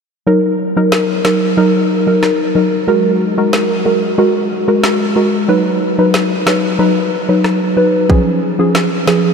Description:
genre	dancehall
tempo	92 BPM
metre	4/4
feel	straight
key	Eb minor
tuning	A4 = 440 Hz
part	soft round pluck	accompaniment	0.3-9.3 s	F3 to B4	-12 LUFS	equal	chorus
part	island pop drum kit	drums	0.9-9.2 s	kick drum, rim click, snare drum	-20 LUFS	equal	none
room	wet huge ambient reverb, RT60 7.1 s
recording	dreamy mix soaked in reverb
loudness	-11 LUFS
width	side -6 dB against mid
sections	0.3-9.3 A section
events	none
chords	0.3 Ebm; 2.9 Gbadd9; 5.5 B; 8.1 Db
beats	| 0.27 0.92 1.57 2.23 | 2.88 3.53 4.18 4.83 | 5.49 6.14 6.79 7.44 | 8.10 8.75

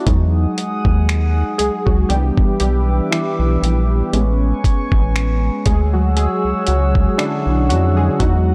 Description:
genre	contemporary R&B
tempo	59 BPM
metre	4/4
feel	swing 54% on 16ths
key	unclear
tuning	A4 = 441 Hz
part	warm analog keys	accompaniment	0.0-8.5 s	D3 to G#4	-22 LUFS	equal	chorus
part	chorused pulse-width pad	sustained chords	0.0-8.5 s	G#4 to E6	-28 LUFS	equal	sidechain pumping
part	rubbery square bass	bass	0.1-8.5 s	A1 to F2	-18 LUFS	equal	none
part	dusty soul sampler-style drum kit	drums	0.1-8.5 s	finger snaps, hi-hat, kick drum	-21 LUFS	equal	none
room	little or no reverb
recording	dark, warm production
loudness	-17 LUFS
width	mono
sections	0.1-8.5 A section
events	synth keys solo 0.1-8.5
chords	0.1 Emaj9; 2.1 Cmaj9 (rootless); 4.1 Amaj9; 5.7 Dmaj9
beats	| 0.07 1.08 2.10 3.12 | 4.14 5.15 6.17 7.19 | 8.20

